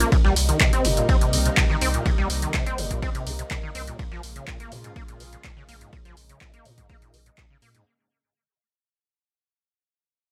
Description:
acid house; 124 BPM; 4/4; straight; A4 = 440 Hz
lush unison pad; sustained chords; 0.0-7.8 s; C3 to F4; -34 LUFS; equal; chorus, phaser, sidechain pumping
acid bass, saw; riff; 0.0-7.8 s; Ab2 to C4; -30 LUFS; equal; overdrive, ensemble chorus, tape echo
saturated sub bass; bass; 0.0-7.8 s; G1 to Bb2; -29 LUFS; equal; tube saturation, sidechain pumping
punchy analog drum machine; drums; 0.0-7.8 s; handclaps, hi-hat, shaker; -28 LUFS; equal; overdrive
breakbeat sampler-style drum kit; drums; 0.1-7.9 s; ride cymbal, snare drum; -37 LUFS; equal; high-pass filter on cymbals, high-pass filter on snare
electronic kick drum; drums; 0.1-7.5 s; -25 LUFS; equal
light reverb; -22 LUFS; mono
0.0-7.9 A section
fade-out 0.0-7.9; filter sweep on acid bass 0.0-7.9
0.1 Cm7; 4.0 Bbm7

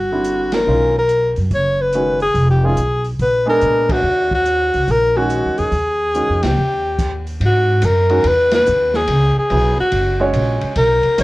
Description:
jazz, small-group swing and bop; 143 BPM; 4/4; swing 66% on 8ths; Eb minor, G# minor from 7.4 s; A4 = 439 Hz
bright alto saxophone; melody; 0.0-11.2 s; Gb4 to C#5; -16 LUFS; left 1 dB
upright bass; bass; 0.0-11.2 s; F1 to Bb2; -19 LUFS; equal
warm baby grand piano; accompaniment; 0.1-11.2 s; D3 to C#5; -21 LUFS; right 2 dB
open jazz drum kit; drums; 0.2-11.2 s; crash cymbal, hi-hat, kick drum, ride cymbal, snare drum; -26 LUFS; equal
moderate studio reverb, RT60 0.5 s; worn, warbling old tape, cassette tape, warbly pitch drift; -14 LUFS; side -19 dB against mid
0.0-7.4 A section; 7.4-11.2 B section
band accent 0.5, 3.8, 6.4, 8.5; stop 7.0-7.4
0.0 C; 0.7 Bmaj9#11; 2.4 Fm7b5; 3.2 Bb7b9; 4.0 Ebm7; 6.6 Eb; 7.4 G#m9; 9.1 C#m7; 9.9 F#add9

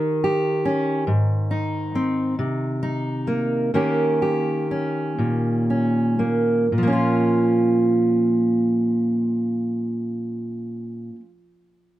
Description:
folk; 38-46 BPM (dotted quarters); 6/8; straight; Bb dorian; A4 = 440 Hz
fingerpicked steel-string acoustic guitar; accompaniment; 0.0-11.3 s; Ab2 to G4; -19 LUFS; equal
little or no reverb; close, detailed microphones; -19 LUFS; side -14 dB against mid
0.0-6.7 A section; 6.7-9.9 B section
slowing down 1.1-6.7
0.0 Eb7; 1.1 Ab; 2.4 Cm7; 3.8 Eb7; 6.7 Bbm

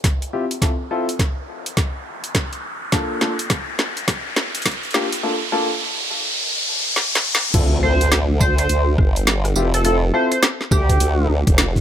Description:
glitch hop; 104 BPM; 4/4; swing 62% on 16ths; D minor; A4 = 437 Hz
drum and bass drum kit; drums; 0.0-11.8 s; crash cymbal, hi-hat, rim click, snare drum, tambourine; -20 LUFS; equal; overdrive
electronic kick drum; drums; 0.0-11.8 s; -19 LUFS; equal
riser and impact; sound effects; 0.1-9.8 s; -24 LUFS; equal
warm baby grand piano; stabs; 0.3-10.3 s; Bb3 to A4; -24 LUFS; left 2 dB; sidechain pumping, ping-pong delay
formant-sweep wobble bass; bass; 7.5-11.8 s; F1 to D2; -18 LUFS; equal; chorus, tube saturation
sync lead; melody; 7.8-11.3 s; G4 to C5; -23 LUFS; right 1 dB; lush chorus, ping-pong delay
light reverb; high-pass filter; -17 LUFS; side -10 dB against mid
0.0-7.5 A section; 7.5-11.8 B section
build-up 0.0-7.5; drum fill 0.0-5.2, 7.0-7.5; filter sweep 0.0-7.5; riser 0.1-7.5; drop 7.5-11.8; impact 7.5-9.8
0.0 Cadd11; 2.9 Gm7 (rootless); 7.5 Dm7

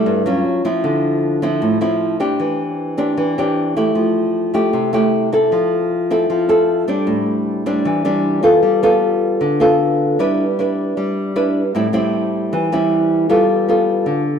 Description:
bossa nova; 154 BPM; 4/4; straight; A minor; A4 = 437 Hz
nylon-string guitar; solo; 0.0-14.4 s; G2 to B4; -14 LUFS; equal
wet echo chamber reverb, RT60 1.9 s; heard from further back in the room; -14 LUFS; side -7 dB against mid
0.0-8.6 A section; 8.6-14.4 B section
0.5 Cadd11; 0.8 Dm9; 2.4 Am7/E; 4.0 Fmaj9; 5.5 Dm9/F; 7.1 Am11; 8.6 G9; 10.2 Em7/G; 11.7 Am7; 13.3 G9

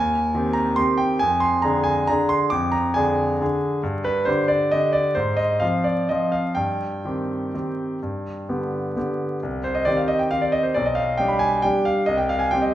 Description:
classical, piano waltz; 120-146 BPM; 3/4; rubato; C minor; A4 = 440 Hz
bright concert grand piano; solo; 0.0-12.7 s; B1 to D6; -19 LUFS; equal
wet recital hall reverb, RT60 1.4 s; minimal, uncompressed stereo recording, vinyl crackle; -19 LUFS; side -13 dB against mid
0.0-9.4 A section; 9.4-12.7 A section
0.0 Abmaj7; 1.2 Ddim/F; 3.8 G5; 5.2 Fm/Ab; 6.6 Cm/G; 8.0 G; 9.4 Cm; 10.8 G/B; 12.1 C5

